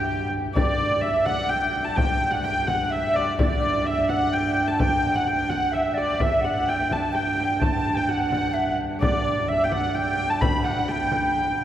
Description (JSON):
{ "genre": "medieval dance", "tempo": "128 BPM", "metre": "3/4", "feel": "straight", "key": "unclear", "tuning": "A4 = 440 Hz", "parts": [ { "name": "dark hurdy-gurdy", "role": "melody", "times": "0.0-11.6 s", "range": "D5 to B5", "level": "-24 LUFS", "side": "left 1 dB", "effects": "none" }, { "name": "breathy tenor recorder", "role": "second line", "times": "0.0-11.5 s", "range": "D5 to B5", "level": "-27 LUFS", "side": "right 2 dB", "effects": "none" }, { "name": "clear viola da gamba", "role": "drone", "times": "0.0-11.6 s", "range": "G2", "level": "-29 LUFS", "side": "right 1 dB", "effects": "none" }, { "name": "frame drum", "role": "percussion", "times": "0.3-11.5 s", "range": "none", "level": "-28 LUFS", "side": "left 1 dB", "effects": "none" } ], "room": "wet cathedral reverb, RT60 5.0 s", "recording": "heard from further back in the room", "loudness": "-21 LUFS", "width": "side -11 dB against mid", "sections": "0.6-11.6 A section", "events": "none", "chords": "none", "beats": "0.08 | 0.55 1.03 1.50 | 1.97 2.44 2.91 | 3.38 3.85 4.32 | 4.79 5.26 5.73 | 6.20 6.67 7.14 | 7.60 8.07 8.54 | 9.01 9.47 9.94 | 10.41 10.88 11.34" }